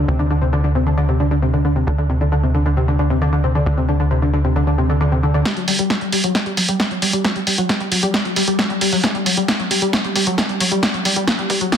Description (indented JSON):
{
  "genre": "uplifting trance",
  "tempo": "134 BPM",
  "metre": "4/4",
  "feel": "straight",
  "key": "unclear",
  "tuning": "A4 = 439 Hz",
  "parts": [
    { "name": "analog pluck", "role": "arpeggios", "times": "0.0-11.8 s", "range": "C3 to G3", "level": "-18 LUFS", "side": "left 1 dB", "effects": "wide subtle chorus, sidechain pumping, tape echo" },
    { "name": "tight sequencer bass", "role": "bass", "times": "0.0-5.4 s", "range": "D2", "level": "-18 LUFS", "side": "right 1 dB", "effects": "sidechain pumping" },
    { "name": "electronic kick drum", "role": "drums", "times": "5.5-11.8 s", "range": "none", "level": "-29 LUFS", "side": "equal", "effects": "high-pass filter on kick" },
    { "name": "punchy analog drum machine", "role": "drums", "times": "5.5-11.8 s", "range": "hi-hat, snare drum", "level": "-18 LUFS", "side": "right 1 dB", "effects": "none" }
  ],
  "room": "moderate digital room reverb, RT60 1.2 s, digital ambience",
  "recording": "dense, heavily limited modern master",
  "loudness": "-15 LUFS",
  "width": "side -8 dB against mid",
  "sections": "0.0-5.5 A section; 5.5-11.8 B section",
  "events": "build-up 5.5-11.8; drum fill 5.5-11.8; filter sweep on synth pluck 5.5-11.8",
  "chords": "0.0 Csus2/D; 5.5 N.C."
}